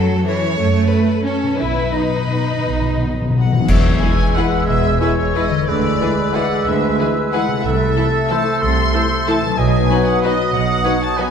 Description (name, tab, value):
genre	classical, orchestral ballroom waltz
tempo	159-204 BPM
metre	3/4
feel	rubato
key	E major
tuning	A4 = 440 Hz
part	rich chamber violin section	second line	0.0-11.3 s	F#4 to C#5	-26 LUFS	left 3 dB	none
part	warm studio viola section	accompaniment	0.0-11.3 s	E3 to E4	-27 LUFS	right 2 dB	none
part	concert harp	arpeggios	0.0-11.3 s	F#2 to B4	-23 LUFS	left 7 dB	none
part	rich chamber cello section	bass	0.0-10.8 s	E2 to E4	-24 LUFS	right 4 dB	none
part	warm studio violin section	melody	0.3-11.3 s	F#4 to C6	-24 LUFS	left 5 dB	none
part	clear chamber double bass section	bass	0.6-10.8 s	E1 to F#2	-22 LUFS	right 4 dB	none
part	timpani	percussion	1.6-3.7 s	B2	-21 LUFS	left 2 dB	none
part	clear clarinet	second line	3.7-11.2 s	A4 to B4	-27 LUFS	left 3 dB	none
part	flute section	second line	3.7-11.2 s	D#6 to E6	-24 LUFS	right 3 dB	none
part	warm oboe	second line	3.7-11.3 s	G#4 to D#5	-27 LUFS	equal	none
part	mellow bassoon	accompaniment	3.7-11.2 s	F#3 to A3	-24 LUFS	right 2 dB	none
part	clash cymbals and concert bass drum	percussion	3.7-4.3 s	none	-20 LUFS	equal	none
part	warm French horn section	sustained chords	4.0-11.3 s	G#3 to E4	-26 LUFS	left 4 dB	none
room	wet scoring stage reverb, RT60 1.6 s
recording	dark, warm production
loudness	-14 LUFS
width	side -7 dB against mid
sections	0.0-3.7 A section; 3.7-11.3 B section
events	timpani fill 1.6-3.7; band accent 3.7-4.0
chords	0.0 F#m7; 1.6 B; 3.7 E; 5.7 E7/D; 7.6 Am/C; 9.6 B